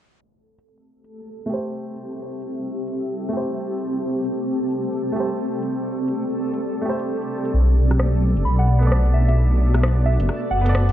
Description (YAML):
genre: future garage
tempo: 131 BPM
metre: 4/4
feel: swing 62% on 16ths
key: A dorian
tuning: A4 = 440 Hz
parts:
  - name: granular cloud pad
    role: sustained chords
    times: 1.9-10.9 s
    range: B3 to E5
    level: -25 LUFS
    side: equal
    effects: built-in reverb
  - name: backwards swelling texture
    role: texture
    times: 1.1-10.9 s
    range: A3 to A4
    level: -34 LUFS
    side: equal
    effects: built-in reverb
  - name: garage drum kit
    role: drums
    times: 0.6-10.9 s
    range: hi-hat, rim click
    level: -27 LUFS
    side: left 1 dB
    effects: small room ambience
  - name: clear upright piano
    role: accompaniment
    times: 1.5-10.9 s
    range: A3 to D5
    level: -30 LUFS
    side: right 1 dB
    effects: analog delay
  - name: swelling detuned saw bass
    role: bass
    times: 7.5-10.9 s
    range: F#1 to B1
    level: -16 LUFS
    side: equal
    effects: none
  - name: soft synth bell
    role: melody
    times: 8.4-10.9 s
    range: E5 to B5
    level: -27 LUFS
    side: right 1 dB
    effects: chorus, phaser, tape echo
room: little or no reverb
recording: dark, warm production, vinyl crackle, low-pass filter, nothing above 10.3 kHz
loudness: -19 LUFS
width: side -12 dB against mid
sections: 0.2-10.9 A section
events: filter sweep on ambient pad 0.2-10.9; filter sweep 0.2-10.9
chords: 0.2 Am7; 7.5 Bm7